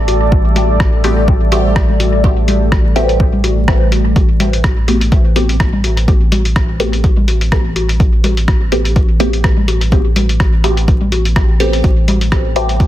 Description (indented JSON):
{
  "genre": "dub techno",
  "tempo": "125 BPM",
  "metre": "4/4",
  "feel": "swing 55% on 16ths",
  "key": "A minor",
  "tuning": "A4 = 442 Hz",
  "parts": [
    { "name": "deep dark ambient pad", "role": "sustained chords", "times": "0.0-12.9 s", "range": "G3 to D5", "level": "-22 LUFS", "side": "equal", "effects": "chorus, built-in reverb, sidechain pumping" },
    { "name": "round analog bass", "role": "bass", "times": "0.0-12.9 s", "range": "A1", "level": "-15 LUFS", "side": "equal", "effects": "sidechain pumping" },
    { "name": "lo-fi sampler-style drum kit", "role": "drums", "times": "0.1-12.9 s", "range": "hi-hat, rim click", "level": "-21 LUFS", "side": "left 1 dB", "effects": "soft clipping on snare, dub echo" },
    { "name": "bongos and congas", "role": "percussion", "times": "0.1-12.9 s", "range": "none", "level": "-22 LUFS", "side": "left 3 dB", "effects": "overdrive, sidechain pumping on perc, dub echo" },
    { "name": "electronic kick drum", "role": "drums", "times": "0.3-12.9 s", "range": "none", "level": "-14 LUFS", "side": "equal", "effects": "overdrive" },
    { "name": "filtered dub chord stab", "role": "stabs", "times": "1.0-12.8 s", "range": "A3 to G4", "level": "-20 LUFS", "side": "equal", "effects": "phaser, sidechain pumping, dub echo" }
  ],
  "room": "digital ambience",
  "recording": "dense, heavily limited modern master, vinyl crackle",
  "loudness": "-10 LUFS",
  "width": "side -13 dB against mid",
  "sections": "0.0-12.9 A section",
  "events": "none",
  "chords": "0.0 Am9"
}